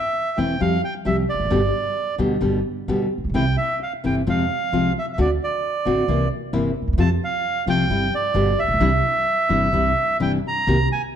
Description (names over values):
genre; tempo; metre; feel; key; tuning
tango; 132 BPM; 4/4; rubato; C major; A4 = 441 Hz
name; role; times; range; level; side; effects
bandoneon; melody; 0.0-11.0 s; D5 to Bb5; -22 LUFS; right 2 dB; none
nylon-string guitar; accompaniment; 0.4-10.8 s; B2 to G4; -22 LUFS; left 2 dB; none
upright bass; bass; 0.4-10.9 s; E1 to F2; -24 LUFS; right 1 dB; none
room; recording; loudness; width
moderate large studio reverb, RT60 1.4 s; dark, warm production; -18 LUFS; side -9 dB against mid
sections
0.0-10.7 A section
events
none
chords
0.0 Am; 0.6 Fsus2; 1.5 G; 3.3 C6; 4.3 Fm; 5.2 D7; 6.1 C7; 7.0 F; 7.9 C/G; 8.3 G; 8.8 Cadd9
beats
0.15 0.60 1.05 | 1.51 1.96 2.42 2.88 | 3.35 3.81 4.27 4.72 | 5.18 5.64 6.09 6.54 | 6.99 7.44 7.89 8.34 | 8.80 9.26 9.73 10.20 | 10.67